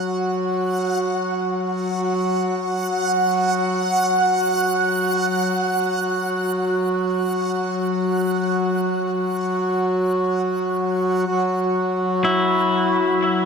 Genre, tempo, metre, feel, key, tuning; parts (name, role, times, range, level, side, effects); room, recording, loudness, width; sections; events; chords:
ambient; free time; A4 = 438 Hz
hand-pumped harmonium; drone; 0.0-13.5 s; F#3 to F#4; -21 LUFS; left 1 dB
backwards swelling texture; texture; 0.0-11.3 s; F#5; -24 LUFS; right 2 dB; built-in reverb, shimmer reverb
semi-hollow electric guitar; arpeggios; 12.2-13.5 s; E4; -19 LUFS; left 1 dB; spring reverb, tape echo, shimmer reverb
wet huge ambient reverb, RT60 7.3 s; -19 LUFS; side -5 dB against mid
0.0-11.3 A section; 11.3-13.5 B section
0.0 N.C.; 11.3 Esus2/F#